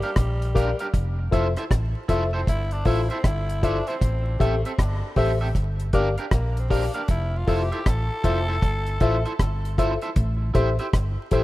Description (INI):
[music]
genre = roots reggae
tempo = 78 BPM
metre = 4/4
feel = swing 63% on 16ths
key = F major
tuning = A4 = 440 Hz
[part]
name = growling tenor saxophone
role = melody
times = 0.0-9.8 s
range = G3 to A4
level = -32 LUFS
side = equal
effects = tape echo
[part]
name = electric guitar at the edge of break-up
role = accompaniment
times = 0.0-11.4 s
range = C4 to F5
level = -31 LUFS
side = right 3 dB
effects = tape echo
[part]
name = deep reggae drum kit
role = drums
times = 0.0-11.4 s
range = hi-hat, kick drum, rim click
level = -23 LUFS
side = equal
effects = none
[part]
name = hollow-body short-scale fingered electric bass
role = bass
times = 0.2-11.4 s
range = F1 to Bb1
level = -25 LUFS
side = equal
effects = none
[part]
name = bright reed electric piano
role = stabs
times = 0.5-11.4 s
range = F4 to F5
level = -28 LUFS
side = left 4 dB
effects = overdrive, phaser
[sound]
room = light reverb, studio reverb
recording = rough home demo mix, vinyl crackle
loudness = -21 LUFS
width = side -17 dB against mid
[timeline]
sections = 0.0-11.4 A section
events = tenor saxophone solo 0.0-11.4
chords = 0.0 Gm7; 0.9 Fmaj7; 4.0 Am7; 5.6 Gm7; 7.1 Fmaj7; 10.2 Am7